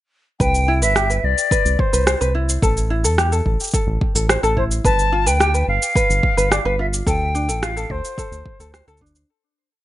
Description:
folktronica; 108 BPM; 4/4; straight; C major; A4 = 441 Hz
silver concert flute; melody; 0.4-8.7 s; C5 to A5; -21 LUFS; left 1 dB; ping-pong delay
ukulele; arpeggios; 0.4-9.3 s; D4 to D5; -23 LUFS; right 1 dB; vintage 12-bit sampler grit, ping-pong delay
round analog bass; bass; 0.4-9.2 s; G1 to E2; -20 LUFS; equal
electronic kick drum; drums; 0.4-9.1 s; -21 LUFS; equal
electronic shaker and rim click; drums; 0.4-9.3 s; -21 LUFS; right 1 dB
light reverb; nothing above 11.0 kHz; -16 LUFS; side -14 dB against mid
0.4-9.3 groove
fade-out 6.3-9.3
0.4 Cmaj7; 2.6 A5; 4.8 G7; 7.1 D7(no3)

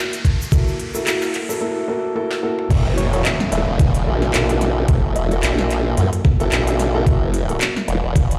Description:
glitch hop; 110 BPM; 4/4; swing 57% on 16ths; A4 = 440 Hz
riser and downlifter; sound effects; 0.0-7.1 s; -30 LUFS; equal
drum and bass drum kit; drums; 0.1-8.4 s; crash cymbal, handclaps, hi-hat, snare drum, toms; -26 LUFS; equal; high-pass filter on hats, high-pass filter on snare, high-pass filter on toms, high-pass filter on cymbals
egg shaker; percussion; 0.1-1.6 s; -36 LUFS; equal
electronic kick drum; drums; 0.2-8.3 s; -18 LUFS; equal
warm grand piano; stabs; 0.5-7.6 s; A#3 to A4; -26 LUFS; equal; sidechain pumping, dub echo
formant-sweep wobble bass; bass; 2.7-8.4 s; E1 to F#2; -21 LUFS; equal; chorus, overdrive
woody wave-folded pluck; melody; 3.0-5.6 s; C#5 to E5; -31 LUFS; equal; chorus, cassette tape, dub echo
light reverb, digital ambience; played on a big sound system in a bare room, stone room reverb; -19 LUFS; mono
0.0-2.7 A section; 2.7-8.4 B section
build-up 0.0-2.7; riser 0.0-1.6; drum fill 2.2-2.7; drop 2.7-8.4
0.0 F#7#9

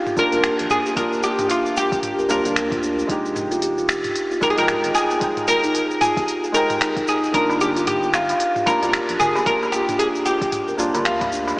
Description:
organic downtempo; 113 BPM; 4/4; swing 59% on 16ths; A4 = 440 Hz
oud; melody; 0.0-11.6 s; F4 to Bb4; -20 LUFS; equal; digital delay, shimmer reverb
felt-muted upright piano; accompaniment; 0.0-11.6 s; Ab3 to G5; -26 LUFS; equal; sidechain pumping, tape echo, shimmer reverb
kalimba; arpeggios; 0.1-11.5 s; D4 to G5; -24 LUFS; equal; tape echo, shimmer reverb, slapback echo
organic electronic drum kit; drums; 0.1-11.6 s; finger snaps, hi-hat, shaker, toms; -26 LUFS; equal
electronic kick drum; drums; 0.2-11.3 s; -30 LUFS; equal
warm sub bass; bass; 0.3-11.5 s; D1 to D2; -38 LUFS; equal; sidechain pumping
darbuka; percussion; 7.5-11.6 s; -31 LUFS; equal
wet lush hall reverb, RT60 2.9 s; big arena sound, small speaker sound; -17 LUFS; side -24 dB against mid
0.0-11.6 A section
0.0 Gm7; 3.1 Fm9; 7.3 Gm7

